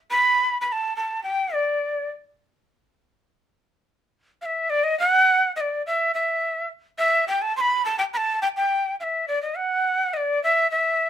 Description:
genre	andean folk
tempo	105 BPM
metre	2/4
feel	straight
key	E minor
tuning	A4 = 441 Hz
part	breathy quena	solo	0.1-2.1, 4.4-11.1 s	D5 to C6	-20 LUFS	equal	none
room	moderate studio ambience, RT60 0.5 s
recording	none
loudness	-20 LUFS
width	side -10 dB against mid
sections	0.1-4.7 A section; 4.7-11.1 B section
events	none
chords	none

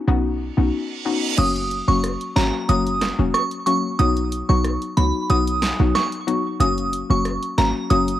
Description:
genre	dancehall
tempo	92 BPM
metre	4/4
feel	straight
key	F# major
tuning	A4 = 440 Hz
part	hollow square pluck	accompaniment	0.0-8.1 s	F#3 to F#4	-23 LUFS	left 6 dB	chorus, cassette tape
part	short 808-style bass	bass	0.1-8.2 s	E1 to C#2	-21 LUFS	right 2 dB	none
part	reverse cymbal	sound effects	0.7-1.4 s	none	-28 LUFS	right 8 dB	none
part	glassy synth bell	melody	1.4-8.2 s	A#5 to D#6	-23 LUFS	right 2 dB	chorus, tremolo, cassette tape, tape echo
part	deep house drum kit	drums	1.4-8.2 s	crash cymbal, hi-hat, rim click, snare drum	-28 LUFS	right 1 dB	cassette tape
room	light reverb, digital ambience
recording	home recording on cassette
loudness	-18 LUFS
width	side -12 dB against mid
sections	0.0-1.4 A section; 1.4-8.2 B section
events	reverse cymbal 0.7-1.4; kick muted 1.4-8.2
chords	0.0 Badd9; 1.4 F#; 4.0 B; 6.6 F#

